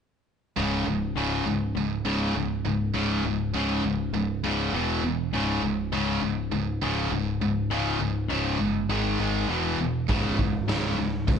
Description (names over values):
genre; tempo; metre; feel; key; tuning
hard rock; 101 BPM; 4/4; straight; C# minor; A4 = 440 Hz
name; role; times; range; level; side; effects
cranked stack guitar; riff; 0.6-11.4 s; C#2 to G#3; -27 LUFS; left 5 dB; overdrive
scooped high-gain guitar; riff; 0.6-11.4 s; C#2 to G#3; -29 LUFS; right 9 dB; distortion
picked electric bass; bass; 0.6-11.4 s; C#1 to G#1; -31 LUFS; equal; none
raw garage drum kit; drums; 10.1-11.4 s; hi-hat, kick drum, snare drum; -26 LUFS; right 1 dB; none
room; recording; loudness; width
moderate large studio reverb, RT60 1.1 s; band playing live in one room, nothing above 10.4 kHz; -24 LUFS; side -7 dB against mid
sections
0.6-11.4 A section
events
none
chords
0.6 C#5; 4.7 E5; 5.3 C#5; 8.9 G#5; 9.5 E5; 10.1 C#5